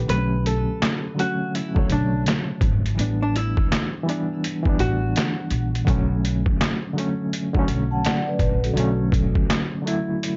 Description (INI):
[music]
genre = lo-fi hip hop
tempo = 83 BPM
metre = 4/4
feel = swing 63% on 16ths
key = B minor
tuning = A4 = 439 Hz
[part]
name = reed electric piano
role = accompaniment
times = 0.0-10.4 s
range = C#3 to C#5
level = -27 LUFS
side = equal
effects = fast tremolo
[part]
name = upright bass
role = bass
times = 0.0-9.3 s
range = G#1 to B1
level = -26 LUFS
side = equal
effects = none
[part]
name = vintage hollow-body jazz guitar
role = melody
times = 0.1-5.8 s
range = D4 to B4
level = -31 LUFS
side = equal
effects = tape echo
[part]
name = trip hop sampler-style drum kit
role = drums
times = 0.1-10.4 s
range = handclaps, hi-hat, kick drum, snare drum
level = -25 LUFS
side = equal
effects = overdrive, vintage 12-bit sampler grit
[part]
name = vibraphone with soft mallets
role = second line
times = 7.9-9.0 s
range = F#4 to A5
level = -31 LUFS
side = equal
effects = tape echo
[sound]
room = light reverb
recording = cassette tape, nothing above 7.7 kHz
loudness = -22 LUFS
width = mono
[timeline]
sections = 0.0-10.4 A section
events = kick muted 0.1-1.5; reed electric piano fill 10.2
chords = 0.1 Bm7; 3.0 A9sus4; 5.9 Bm7; 8.8 Bm9